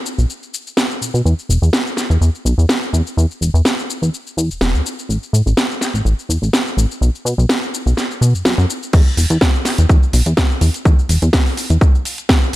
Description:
filtered disco house; 125 BPM; 4/4; swing 54% on 16ths; A4 = 438 Hz
house drum kit; drums; 0.1-12.6 s; crash cymbal, hi-hat, shaker, snare drum; -19 LUFS; equal; overdrive, sidechain pumping on perc, sidechain pumping on hats, sidechain pumping on cymbals
plucky analog bass; bass; 0.2-12.6 s; E1 to B2; -14 LUFS; equal; sidechain pumping, low-pass filter
electronic kick drum; drums; 8.9-12.4 s; -12 LUFS; equal; overdrive
little or no reverb; -14 LUFS; side -16 dB against mid
0.0-8.9 A section; 8.9-12.6 B section
filter sweep on analog synth bass 0.0-8.9; drop 8.9-12.6
0.29 0.77 | 1.25 1.73 2.21 2.69 | 3.17 3.65 4.13 4.61 | 5.09 5.57 6.05 6.53 | 7.01 7.49 7.97 8.45 | 8.93 9.41 9.89 10.37 | 10.85 11.33 11.81 12.29

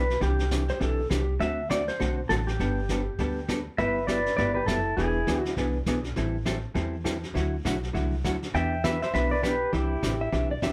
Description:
country, western swing; 202 BPM; 4/4; swing 60% on 8ths; G major; A4 = 440 Hz
pedal steel guitar; melody; 0.0-5.5, 8.5-10.3 s; E4 to G5; -30 LUFS; equal; plate reverb
vintage hollow-body jazz guitar; accompaniment; 0.0-10.7 s; C3 to A4; -33 LUFS; equal
upright bass; bass; 0.0-10.7 s; E1 to E2; -32 LUFS; equal
vintage brush drum kit; drums; 0.1-10.7 s; brushed snare drum, hi-hat, kick drum, snare drum; -36 LUFS; equal
clean lap steel guitar; second line; 0.7-1.3, 10.2-10.7 s; G4 to E5; -34 LUFS; equal
moderate club reverb, RT60 0.6 s; -27 LUFS; mono
0.0-3.8 A section; 3.8-10.7 A section
0.2 Cadd9; 1.4 D7; 2.6 Gadd9; 3.8 G6; 5.0 E7; 6.2 Am7; 7.4 Dadd9; 8.5 Em7; 9.7 Cadd9
| 0.21 0.51 0.81 1.11 | 1.41 1.70 2.00 2.30 | 2.60 2.89 3.19 3.49 | 3.79 4.08 4.38 4.68 | 4.98 5.27 5.57 5.87 | 6.17 6.46 6.76 7.06 | 7.36 7.65 7.95 8.25 | 8.54 8.84 9.14 9.44 | 9.73 10.03 10.33 10.62

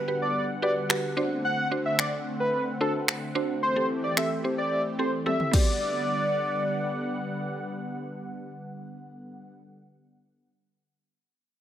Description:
dance-pop; 110 BPM; 4/4; straight; G major; A4 = 440 Hz
mallet-like synth pluck; accompaniment; 0.0-9.5 s; B3 to C5; -30 LUFS; right 1 dB; chorus, sidechain pumping
warm analog pad; sustained chords; 0.0-9.5 s; D3 to F#5; -33 LUFS; equal; chorus, sidechain pumping
downlifter; sound effects; 0.0-1.4 s; -55 LUFS; right 1 dB
wide unison lead; melody; 0.2-7.4 s; A4 to F#5; -28 LUFS; equal; digital delay
pop drum kit; drums; 0.9-5.7 s; crash cymbal, finger snaps, kick drum, toms; -26 LUFS; equal
light reverb; -25 LUFS; side -11 dB against mid
0.0-5.8 A section; 5.8-10.2 B section
drum fill 5.3-5.8
0.0 Gmaj7; 1.2 D7; 3.6 Am7; 5.5 Gmaj7
0.35 0.90 | 1.44 1.99 2.53 3.08 | 3.62 4.17 4.72 5.26 | 5.81 6.35 6.90 7.44 | 7.99 8.53 9.08

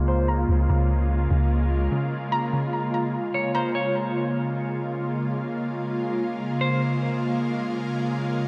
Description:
hip hop; 147 BPM; 4/4; half-time; Db major; A4 = 440 Hz
ethereal airy pad; sustained chords; 0.0-8.5 s; Db3 to F4; -27 LUFS; equal; ensemble chorus, built-in reverb, low-pass filter
soft round pluck; arpeggios; 0.0-4.0 s; Db3 to Bb5; -32 LUFS; equal; chorus, low-pass filter, analog delay
soft 808-style bass; bass; 0.0-1.9 s; Db2; -24 LUFS; equal
clean electric guitar; melody; 0.1-0.3, 3.3-3.9, 6.6-6.8 s; C5 to Db5; -34 LUFS; equal; subtle chorus, low-pass filter, analog delay
wet cathedral reverb, RT60 6.2 s; dreamy mix soaked in reverb; -25 LUFS; mono
0.0-4.0 A section; 4.0-8.5 B section
filter sweep 0.0-4.0
0.0 Db6
0.28 | 0.69 1.10 1.51 1.92 | 2.32 2.73 3.14 3.55 | 3.96 4.37 4.77 5.18 | 5.59 6.00 6.41 6.81 | 7.22 7.63 8.04 8.45

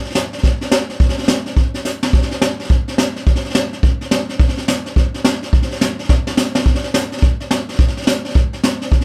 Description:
rock; 212 BPM; 4/4; swing 62% on 8ths
vintage brush drum kit; drums; 0.1-9.0 s; hi-hat, kick drum, snare drum; -17 LUFS; equal
light reverb; band playing live in one room; -17 LUFS; mono
0.0-6.7 A section; 6.7-9.0 B section
drum fill 1.9, 6.1-6.7
0.15 0.44 0.72 | 1.00 1.28 1.57 1.85 | 2.13 2.42 2.70 2.98 | 3.27 3.55 3.83 4.11 | 4.40 4.68 4.96 5.24 | 5.53 5.81 6.09 6.37 | 6.66 6.94 7.22 7.50 | 7.79 8.07 8.35 8.63 | 8.91

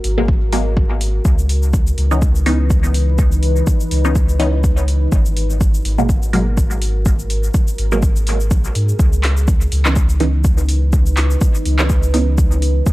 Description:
dub techno; 124 BPM; 4/4; swing 56% on 16ths; C# minor; A4 = 440 Hz
deep dark ambient pad; sustained chords; 0.0-12.9 s; E3 to B4; -26 LUFS; equal; chorus, built-in reverb, sidechain pumping
filtered dub chord stab; stabs; 0.0-12.9 s; B2 to D#4; -21 LUFS; right 1 dB; phaser, sidechain pumping, dub echo
warm sub bass; bass; 0.0-12.9 s; G#1 to G#2; -16 LUFS; equal; tube saturation, sidechain pumping
deep house drum kit; drums; 0.0-12.9 s; handclaps, hi-hat, shaker; -25 LUFS; equal; overdrive
electronic kick drum; drums; 0.3-12.9 s; -15 LUFS; equal; overdrive
digital ambience; dry, gritty hardware recording, vinyl crackle; -13 LUFS; side -18 dB against mid
0.0-9.0 A section; 9.0-12.9 A section
filter sweep on synth stab 9.0-12.9
0.0 G#m9; 1.3 C#m9; 5.1 G#m9; 9.0 C#m9
0.28 0.77 | 1.25 1.74 2.22 2.70 | 3.19 3.67 4.16 4.64 | 5.12 5.61 6.09 6.58 | 7.06 7.54 8.03 8.51 | 8.99 9.48 9.96 10.45 | 10.93 11.41 11.90 12.38 | 12.87

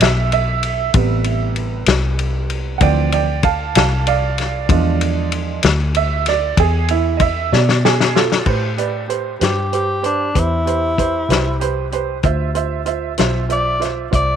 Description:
slow blues; 64 BPM (dotted quarters); 12/8; straight; A minor; A4 = 440 Hz
clear upright piano; accompaniment; 0.0-14.4 s; C3 to A5; -20 LUFS; right 13 dB
vintage muted fingered electric bass; bass; 0.0-14.4 s; A1 to B2; -19 LUFS; left 1 dB
warm soul drum kit; drums; 0.0-14.3 s; crash cymbal, hi-hat, kick drum, ride cymbal, snare drum; -19 LUFS; left 5 dB
breathy tenor saxophone; melody; 9.4-14.4 s; D4 to D5; -19 LUFS; left 2 dB
light reverb; 1960s-style stereo; -15 LUFS; side -8 dB against mid
0.0-8.5 A section; 8.5-14.4 B section
upright piano solo 0.0-8.5; drum fill 7.5-8.5
0.0 E5; 0.9 Am7; 2.8 Dm7; 4.7 E7b9; 8.5 Am7; 12.2 Dm7
0.01 | 0.95 1.88 2.82 3.76 | 4.70 5.64 6.58 7.52 | 8.46 9.41 10.35 11.29 | 12.24 13.19 14.13

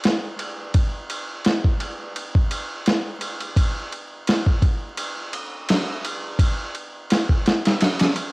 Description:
trip hop; 85 BPM; 4/4; swing 55% on 16ths
dusty soul sampler-style drum kit; drums; 0.0-8.3 s; kick drum, ride cymbal, snare drum; -20 LUFS; equal; overdrive, cassette tape
light reverb; home recording on cassette, vinyl crackle; -20 LUFS; side -26 dB against mid
0.0-8.3 A section
0.04 | 0.74 1.45 2.15 2.86 | 3.56 4.27 4.98 5.68 | 6.39 7.09 7.80

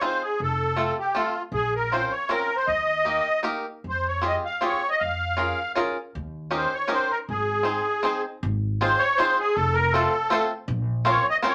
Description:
musette waltz; 157 BPM; 3/4; rubato; Ab major; A4 = 440 Hz
musette accordion; melody; 0.0-11.5 s; F4 to F5; -26 LUFS; equal
bluegrass banjo; accompaniment; 0.0-11.5 s; A3 to C5; -28 LUFS; equal
upright bass; bass; 0.4-11.2 s; F1 to F2; -32 LUFS; equal
wet club reverb, RT60 0.5 s; -24 LUFS; mono
0.0-8.4 A section; 8.4-11.5 A section
0.4 F; 1.5 Bbmadd9; 2.7 Eb; 3.8 Fmadd9; 5.0 Bbm7/F; 6.1 Eb7; 7.3 Ab; 8.4 Ab6; 9.6 F; 10.7 Bbmadd9
0.01 | 0.39 0.77 1.15 | 1.53 1.91 2.29 | 2.68 3.06 3.45 | 3.84 4.23 4.62 | 5.00 5.39 5.77 | 6.14 6.52 6.90 | 7.28 7.66 8.05 | 8.44 8.82 9.20 | 9.57 9.94 10.31 | 10.68 11.05 11.43

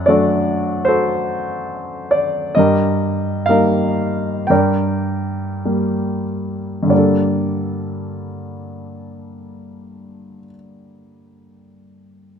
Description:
classical, lyrical solo piano; 47-77 BPM; 4/4; rubato; G minor; A4 = 435 Hz
clear grand piano; solo; 0.0-12.4 s; F#2 to G5; -16 LUFS; equal
light reverb; close, detailed microphones; -16 LUFS; side -7 dB against mid
0.0-6.9 A section; 6.9-11.7 B section
slowing down 0.0-6.9
0.0 D/F#; 2.6 Eb/G; 4.5 Gm; 6.9 Gmadd9
0.08 0.87 1.69 | 2.57 3.49 4.50 5.66 | 6.91 8.13 9.30 10.48

